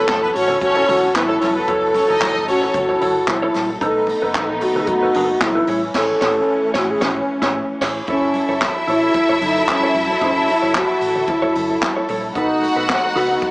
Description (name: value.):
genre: disco.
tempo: 112 BPM.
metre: 4/4.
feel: straight.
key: F# dorian.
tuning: A4 = 441 Hz.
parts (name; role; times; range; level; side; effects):
mellow hollow wooden-headed alto flute; melody; 0.0-13.5 s; C#4 to A4; -19 LUFS; equal; none.
clear symphonic string section; second line; 0.0-3.0, 8.1-13.5 s; A3 to F#5; -20 LUFS; equal; none.
mellow electric guitar; accompaniment; 0.0-13.5 s; D#4 to C#5; -24 LUFS; right 1 dB; none.
dark studio string section; sustained chords; 0.0-13.5 s; E3 to A4; -23 LUFS; equal; none.
hollow-body short-scale fingered electric bass; bass; 0.0-13.4 s; E1 to F#2; -34 LUFS; equal; none.
jazz brush drum kit; drums; 0.1-13.5 s; crash cymbal, handclaps, hi-hat, kick drum, snare drum; -24 LUFS; equal; none.
congas; percussion; 0.1-13.5 s; none; -35 LUFS; left 1 dB; none.
room: light reverb, small room ambience.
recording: small speaker sound.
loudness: -15 LUFS.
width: side -24 dB against mid.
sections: 0.0-8.1 A section; 8.1-13.5 B section.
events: band accent 5.9-8.1.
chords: 0.0 F#m7; 3.8 B7; 5.7 Amaj7; 8.1 F#m7; 12.4 B7.